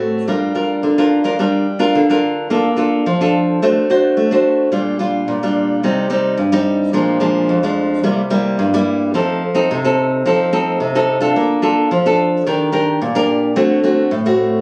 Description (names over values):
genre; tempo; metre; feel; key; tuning
samba; 109 BPM; 4/4; straight; Bb major; A4 = 442 Hz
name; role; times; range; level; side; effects
nylon-string guitar; solo; 0.0-14.6 s; F2 to C5; -16 LUFS; equal; none
room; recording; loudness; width
moderate studio reverb, RT60 0.8 s; recorded on a phone in the room, club reverb, compression; -16 LUFS; mono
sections
0.0-2.5 A section; 2.5-14.6 B section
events
none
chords
0.3 Gm7; 2.5 Bbmaj7; 3.6 D7/A; 4.7 Gm7/Bb; 5.8 Cm; 6.9 Bb7; 8.0 C7; 9.2 F7; 11.4 Bbmaj7; 12.5 Ebmaj7; 13.6 D7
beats
| 0.29 0.84 1.40 1.95 | 2.51 3.06 3.62 4.17 | 4.73 5.28 5.83 6.39 | 6.94 7.49 8.05 8.60 | 9.15 9.70 10.25 10.80 | 11.36 11.91 12.46 13.01 | 13.56 14.11